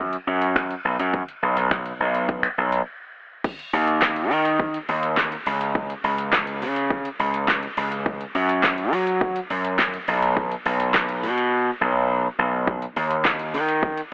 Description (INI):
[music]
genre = dance-pop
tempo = 104 BPM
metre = 4/4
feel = straight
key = unclear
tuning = A4 = 440 Hz
[part]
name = gritty slap bass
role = bass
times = 0.0-14.0 s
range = B1 to Gb3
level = -21 LUFS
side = equal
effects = overdrive, sidechain pumping
[part]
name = pop drum kit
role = drums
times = 0.1-14.1 s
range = crash cymbal, finger snaps, handclaps, hi-hat, kick drum, snare drum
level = -25 LUFS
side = equal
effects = overdrive
[sound]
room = light reverb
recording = telephone sound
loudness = -20 LUFS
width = side -28 dB against mid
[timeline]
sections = 0.0-3.4 A section; 3.4-14.1 B section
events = break 2.9-3.4; silent gap 11.5-12.7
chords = none